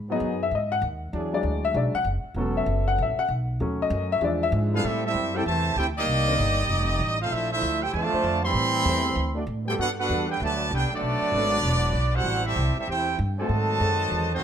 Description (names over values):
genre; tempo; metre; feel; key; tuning
jazz, big band swing; 194 BPM; 4/4; swing 63% on 8ths; A minor from 4.8 s; A4 = 440 Hz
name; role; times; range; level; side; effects
upright bass; bass; 0.0-14.4 s; E1 to A2; -27 LUFS; equal; none
warm concert grand piano; accompaniment; 0.1-4.8 s; F3 to F#5; -25 LUFS; left 4 dB; none
mellow trombone section; sustained chords; 0.1-14.3 s; Eb3 to D5; -32 LUFS; left 1 dB; none
bright trumpet section; melody; 4.7-14.4 s; A3 to C6; -26 LUFS; right 2 dB; none
bright trombone section; second line; 4.7-14.4 s; C3 to A4; -30 LUFS; right 2 dB; none
room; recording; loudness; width
light reverb; none; -22 LUFS; side -8 dB against mid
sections
0.0-4.8 A section; 4.8-14.4 B section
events
grand piano solo 0.0-4.8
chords
0.0 G#m7; 1.1 E9; 2.4 A69; 3.6 D#m7b5; 4.2 E7b9; 4.8 Am7; 6.1 Cm9; 6.7 F13; 7.3 Bbmaj9#11; 8.6 Am9; 9.2 D7; 9.8 Gmaj9; 11.0 Bm7; 11.6 E5; 12.3 Am7; 13.5 G#7b9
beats
0.21 0.52 0.82 | 1.13 1.44 1.75 2.06 | 2.37 2.68 2.99 3.30 | 3.60 3.91 4.22 4.53 | 4.84 5.15 5.46 5.77 | 6.08 6.39 6.70 7.00 | 7.31 7.62 7.93 8.24 | 8.55 8.86 9.17 9.48 | 9.79 10.10 10.40 10.71 | 11.02 11.33 11.64 11.95 | 12.26 12.57 12.88 13.18 | 13.49 13.80 14.11 14.42